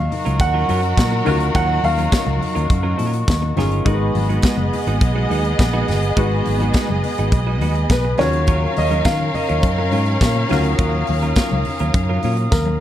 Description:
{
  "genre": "disco",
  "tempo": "104 BPM",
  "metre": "4/4",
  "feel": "straight",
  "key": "Eb minor",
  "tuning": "A4 = 436 Hz",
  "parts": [
    { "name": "dark grand piano", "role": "melody", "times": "0.0-3.0, 7.9-12.8 s", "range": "Bb4 to Gb5", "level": "-23 LUFS", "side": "right 1 dB", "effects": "none" },
    { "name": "clean electric guitar", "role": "accompaniment", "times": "0.0-12.7 s", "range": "Gb3 to Cb5", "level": "-28 LUFS", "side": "right 5 dB", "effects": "none" },
    { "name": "clear concert grand piano", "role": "accompaniment", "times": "0.0-12.8 s", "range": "Eb3 to Cb5", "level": "-28 LUFS", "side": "left 4 dB", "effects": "none" },
    { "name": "glass harmonica", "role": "sustained chords", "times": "0.0-12.8 s", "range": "Eb4 to Eb6", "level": "-28 LUFS", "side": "left 1 dB", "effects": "none" },
    { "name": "fingered electric bass", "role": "bass", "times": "0.0-12.8 s", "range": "Gb1 to Eb3", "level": "-20 LUFS", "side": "equal", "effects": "none" },
    { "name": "rich studio string section", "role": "second line", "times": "0.1-12.8 s", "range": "Gb3 to F5", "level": "-24 LUFS", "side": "equal", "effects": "none" },
    { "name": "modern studio drum kit", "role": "drums", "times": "0.1-12.8 s", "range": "hi-hat, kick drum, snare drum, toms", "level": "-21 LUFS", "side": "equal", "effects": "none" },
    { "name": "congas", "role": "percussion", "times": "0.1-12.8 s", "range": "none", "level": "-30 LUFS", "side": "left 4 dB", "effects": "none" },
    { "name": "tambourine", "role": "percussion", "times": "1.0-12.7 s", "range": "none", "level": "-36 LUFS", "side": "right 6 dB", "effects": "none" }
  ],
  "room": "light reverb, small room ambience",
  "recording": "dark, warm production",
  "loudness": "-16 LUFS",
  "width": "side -12 dB against mid",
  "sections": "0.0-12.8 A section",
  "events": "drum fill 12.5",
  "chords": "0.0 Ebm9; 3.9 Abm7; 8.2 Ebm9"
}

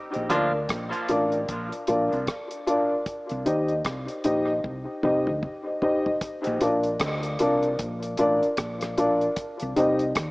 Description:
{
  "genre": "dub reggae",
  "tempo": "76 BPM",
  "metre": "4/4",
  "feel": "swing 61% on 16ths",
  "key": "Bb major",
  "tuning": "A4 = 438 Hz",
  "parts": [
    { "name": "cloth-damped thuddy drum kit", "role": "drums", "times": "0.1-10.3 s", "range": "hi-hat, kick drum, rim click, toms", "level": "-32 LUFS", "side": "equal", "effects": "dub echo" },
    { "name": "hollow-body short-scale fingered electric bass", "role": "bass", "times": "0.2-10.3 s", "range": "A1 to Eb2", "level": "-32 LUFS", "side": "equal", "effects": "none" },
    { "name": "semi-hollow electric guitar", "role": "accompaniment", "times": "0.3-0.5 s", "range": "F3 to F4", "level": "-31 LUFS", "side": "right 1 dB", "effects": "dub echo" },
    { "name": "dark upright piano", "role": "stabs", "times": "0.3-10.0 s", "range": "D4 to Eb5", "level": "-24 LUFS", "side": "left 1 dB", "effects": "dub echo" }
  ],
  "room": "moderate plate reverb, RT60 2.6 s",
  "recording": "echo-heavy mix, small speaker sound",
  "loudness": "-23 LUFS",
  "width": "side -23 dB against mid",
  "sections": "0.0-6.2 A section; 6.2-10.3 B section",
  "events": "break 0.0-6.2; drum fill 4.6-6.2",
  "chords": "0.0 Bb; 3.1 Cm; 6.2 Bb; 9.4 Cm"
}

